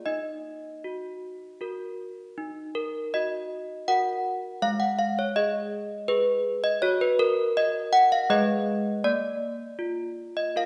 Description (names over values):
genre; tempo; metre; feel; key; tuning
classical, tune for handbells; 80 BPM; 3/4; straight; Eb minor; A4 = 440 Hz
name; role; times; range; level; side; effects
desk bells; solo; 0.0-10.7 s; Ab3 to Gb5; -27 LUFS; equal; none
room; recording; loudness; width
wet recital hall reverb, RT60 1.6 s; heard from further back in the room, nothing above 10.7 kHz; -26 LUFS; mono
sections
0.0-2.4 A section; 2.4-10.7 A section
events
none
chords
0.1 Ebm; 4.6 N.C.; 6.8 Gb6; 8.3 Abm; 9.0 Bb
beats
| 0.06 0.84 1.61 | 2.37 3.15 3.89 | 4.63 5.36 6.09 | 6.83 7.56 8.29 | 9.04 9.79 10.56